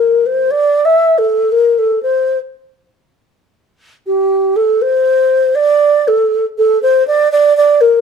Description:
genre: folk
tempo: 119 BPM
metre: 4/4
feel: straight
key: unclear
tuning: A4 = 439 Hz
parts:
  - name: mellow hollow alto flute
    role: melody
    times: 0.0-8.0 s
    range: G4 to E5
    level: -10 LUFS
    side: equal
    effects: none
  - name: fingerpicked plugged-in steel-string acoustic guitar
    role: accompaniment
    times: 0.0-0.5 s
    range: G3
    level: -43 LUFS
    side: left 4 dB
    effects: none
room: moderate studio reverb, RT60 0.8 s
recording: none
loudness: -10 LUFS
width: side -6 dB against mid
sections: 0.0-6.6 A section; 6.6-8.0 B section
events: none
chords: none

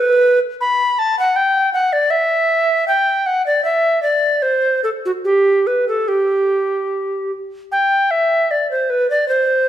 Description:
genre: classical, baroque-style fantasia for unaccompanied recorder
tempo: 71-82 BPM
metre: 3/4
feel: rubato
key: G major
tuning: A4 = 440 Hz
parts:
  - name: tenor recorder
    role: solo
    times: 0.0-9.7 s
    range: F#4 to B5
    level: -14 LUFS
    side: equal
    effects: none
room: moderate recital hall reverb, RT60 1.6 s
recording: minimal, uncompressed stereo recording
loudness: -14 LUFS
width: side -11 dB against mid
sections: 0.0-7.7 A section; 7.7-9.7 B section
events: none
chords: none

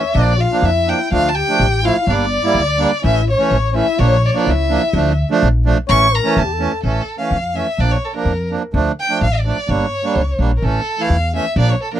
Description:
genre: klezmer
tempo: 126 BPM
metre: 2/4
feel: straight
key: A phrygian dominant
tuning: A4 = 440 Hz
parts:
  - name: rich violin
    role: melody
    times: 0.0-12.0 s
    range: A4 to C#6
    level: -19 LUFS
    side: equal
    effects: none
  - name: clear trombone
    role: second line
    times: 0.0-6.9 s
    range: E4 to D5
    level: -22 LUFS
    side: left 10 dB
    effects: none
  - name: accordion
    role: accompaniment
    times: 0.0-12.0 s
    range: E3 to E4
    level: -19 LUFS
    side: right 5 dB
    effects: none
  - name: upright bass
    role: bass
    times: 0.1-11.7 s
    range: G1 to F2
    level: -17 LUFS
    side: equal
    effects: none
room: light reverb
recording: dry, close 1970s-style studio recording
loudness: -14 LUFS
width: side -11 dB against mid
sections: 0.0-6.8 A section; 6.8-12.0 B section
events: speeding up 0.0-12.0; violin solo 0.0-6.8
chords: 0.2 Bb; 1.1 Dm; 2.1 Gm; 3.0 A; 4.0 Bb; 4.9 Dm; 5.9 A; 7.8 Bb; 8.7 Dm; 9.7 Gm; 10.6 A

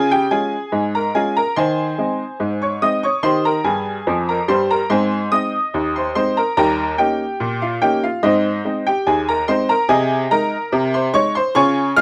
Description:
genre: ragtime piano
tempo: 72 BPM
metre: 2/4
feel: straight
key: Ab major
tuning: A4 = 440 Hz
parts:
  - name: clear upright piano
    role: solo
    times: 0.0-12.0 s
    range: Eb2 to F6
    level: -18 LUFS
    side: equal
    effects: none
room: light reverb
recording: close, detailed microphones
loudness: -18 LUFS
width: mono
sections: 0.0-12.0 A section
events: upright piano fill 3.7-4.9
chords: 0.0 Db; 1.6 Ab/Eb; 3.2 Eb; 4.9 Ab; 6.6 Eb7; 8.2 Ab; 9.9 Ab/C

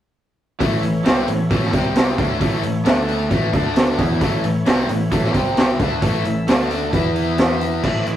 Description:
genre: classic rock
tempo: 133 BPM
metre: 4/4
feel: straight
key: unclear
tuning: A4 = 440 Hz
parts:
  - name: overdriven tonewheel organ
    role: sustained chords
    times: 0.6-7.8 s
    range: A3 to E5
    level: -32 LUFS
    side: right 1 dB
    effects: none
  - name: overdriven electric guitar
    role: riff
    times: 0.6-8.2 s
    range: A2 to E4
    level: -24 LUFS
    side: left 5 dB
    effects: harmonic tremolo
  - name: raw garage guitar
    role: riff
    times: 0.6-8.2 s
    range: A2 to E4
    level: -24 LUFS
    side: right 3 dB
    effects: overdrive
  - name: picked electric bass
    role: bass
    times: 0.6-8.2 s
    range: A1 to E2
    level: -25 LUFS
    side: right 1 dB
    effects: none
  - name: raw garage drum kit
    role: drums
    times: 0.6-8.2 s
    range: crash cymbal, hi-hat, kick drum, snare drum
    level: -18 LUFS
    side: equal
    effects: none
room: moderate studio reverb, RT60 0.5 s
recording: rough rehearsal-room recording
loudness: -16 LUFS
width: side -11 dB against mid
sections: 0.6-7.8 A section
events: none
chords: 0.6 A; 1.7 C5; 2.2 A; 2.9 D5; 3.3 A5; 3.5 D5; 4.0 A; 5.3 C5; 5.8 A; 6.5 D5; 6.9 E5

